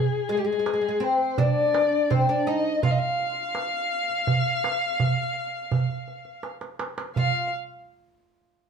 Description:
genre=Arabic maqam ensemble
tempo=83 BPM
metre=4/4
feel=straight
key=unclear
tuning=A4 = 440 Hz
part: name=oud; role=melody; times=0.0-7.5 s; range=Ab3 to F4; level=-26 LUFS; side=equal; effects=none
part: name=dark violin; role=second line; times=0.0-7.5 s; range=G4 to F5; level=-25 LUFS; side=left 4 dB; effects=none
part: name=darbuka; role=percussion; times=0.1-7.5 s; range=none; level=-26 LUFS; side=right 4 dB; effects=none
room=moderate studio reverb, RT60 0.9 s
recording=band playing live in one room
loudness=-22 LUFS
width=side -6 dB against mid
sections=0.0-7.2 A section; 7.2-8.7 B section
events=drum fill 6.4-7.2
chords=none

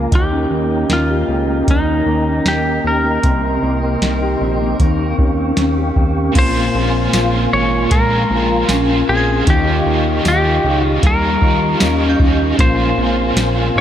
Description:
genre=dream pop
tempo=77 BPM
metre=4/4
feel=straight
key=Bb dorian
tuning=A4 = 440 Hz
part: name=mellow tonewheel organ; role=sustained chords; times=0.0-13.8 s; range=G4 to Db6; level=-23 LUFS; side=right 1 dB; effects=fast rotary speaker
part: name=mellow electric guitar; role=arpeggios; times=0.0-13.8 s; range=Bb2 to Ab4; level=-18 LUFS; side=left 2 dB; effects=ensemble chorus, tape echo
part: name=fat analog bass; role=bass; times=0.0-13.8 s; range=Ab1 to Eb2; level=-19 LUFS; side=equal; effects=none
part: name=soft vintage rhythm box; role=drums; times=0.1-13.5 s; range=crash cymbal, hi-hat, kick drum, snare drum, tambourine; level=-16 LUFS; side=equal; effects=none
part: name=clean lap steel guitar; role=melody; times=0.2-13.8 s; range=Eb4 to Db5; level=-20 LUFS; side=equal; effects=tape echo
part: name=overdriven electric guitar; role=accompaniment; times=6.3-13.8 s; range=Bb2 to F4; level=-23 LUFS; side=right 3 dB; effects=tremolo, analog chorus
part: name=soft synth bell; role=texture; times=6.9-12.9 s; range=C6 to Ab6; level=-31 LUFS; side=right 1 dB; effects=none
room=moderate lush hall reverb, RT60 2.9 s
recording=none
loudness=-13 LUFS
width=side -10 dB against mid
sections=0.0-6.4 A section; 6.4-13.8 B section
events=none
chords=0.1 Eb7; 3.2 Cm7; 4.8 Eb13; 6.4 Bbm9; 9.5 Eb9; 12.6 Bbm9

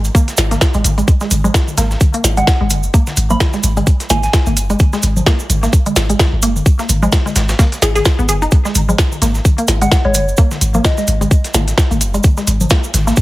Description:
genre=minimal techno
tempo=129 BPM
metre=4/4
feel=swing 57% on 16ths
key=G# minor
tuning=A4 = 441 Hz
part: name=punchy sub bass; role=bass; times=0.0-13.1 s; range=F#1 to G#1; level=-16 LUFS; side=equal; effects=sidechain pumping
part: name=dusty soul sampler-style drum kit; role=drums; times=0.0-13.2 s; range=hi-hat, snare drum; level=-27 LUFS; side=equal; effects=overdrive, high-pass filter on snare, high-pass filter on hats
part: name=cabasa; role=percussion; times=0.0-13.2 s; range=none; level=-24 LUFS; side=right 3 dB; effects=none
part: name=resonant blip pluck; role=riff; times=0.1-13.1 s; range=G#3 to G#4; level=-20 LUFS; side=equal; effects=chorus, sidechain pumping, digital delay
part: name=electronic kick drum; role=drums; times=0.1-13.2 s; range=none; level=-12 LUFS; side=equal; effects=none
part: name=electronic toms and congas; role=percussion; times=0.1-13.0 s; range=none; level=-23 LUFS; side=left 2 dB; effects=overdrive, digital delay
part: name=minimal click drum kit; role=drums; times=0.3-13.0 s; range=hi-hat, snare drum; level=-18 LUFS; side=equal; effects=none
part: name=soft synth bell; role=melody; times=2.4-4.3, 9.8-11.0 s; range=C#5 to B5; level=-22 LUFS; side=equal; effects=chorus, phaser, digital delay
room=digital ambience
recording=heavily compressed radio sound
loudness=-11 LUFS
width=side -18 dB against mid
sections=0.0-13.2 A section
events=none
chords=0.0 G#5

